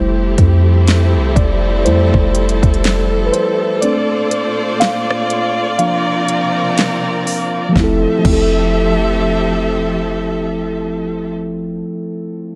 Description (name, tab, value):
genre	contemporary R&B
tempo	61 BPM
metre	4/4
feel	swing 58% on 16ths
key	F major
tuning	A4 = 439 Hz
part	muted felt-like synth keys	accompaniment	0.0-12.6 s	F3 to F5	-20 LUFS	equal	chorus
part	warm studio string section	sustained chords	0.0-11.3 s	Bb2 to E5	-22 LUFS	equal	none
part	warm 808-style bass	bass	0.0-11.8 s	F1 to F2	-18 LUFS	equal	none
part	smooth R&B drum kit	drums	0.4-8.6 s	crash cymbal, hi-hat, kick drum, rim click, snare drum	-19 LUFS	equal	vintage 12-bit sampler grit
room	light reverb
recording	none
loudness	-15 LUFS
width	mono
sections	0.0-7.8 A section; 7.8-11.7 B section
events	synth keys solo 0.0-7.8; break 3.8-7.8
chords	0.0 Fmaj7; 3.8 Bbmaj9; 5.8 C7sus4; 7.8 Fmaj7